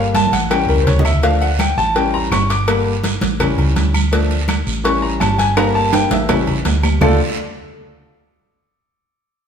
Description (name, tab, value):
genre	latin, salsa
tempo	166 BPM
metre	4/4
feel	straight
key	D harmonic minor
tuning	A4 = 440 Hz
part	clear grand piano	accompaniment	0.0-7.2 s	D3 to D6	-18 LUFS	left 2 dB	none
part	hollow-body short-scale fingered electric bass	bass	0.0-7.2 s	G1 to D2	-18 LUFS	equal	none
part	agogo bells and timbales	percussion	0.1-7.1 s	none	-25 LUFS	right 4 dB	none
part	congas	percussion	0.1-7.1 s	none	-22 LUFS	right 3 dB	none
part	cowbell and bongos	percussion	0.1-7.1 s	none	-24 LUFS	left 2 dB	none
part	guiro	percussion	0.2-7.1 s	none	-30 LUFS	right 5 dB	none
part	claves	percussion	0.5-7.1 s	none	-30 LUFS	equal	none
room	wet stone room reverb, RT60 1.4 s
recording	band playing live in one room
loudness	-13 LUFS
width	side -7 dB against mid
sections	0.0-7.0 A section; 7.0-8.5 B section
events	grand piano solo 0.0-7.0; drum fill 0.1-1.2, 5.6-7.0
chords	0.0 Gm; 0.5 A7; 1.2 Dm; 2.0 A7; 2.7 Gm; 3.4 A7; 4.1 Dm; 4.8 A7; 5.6 Gm; 6.3 A7; 7.0 D5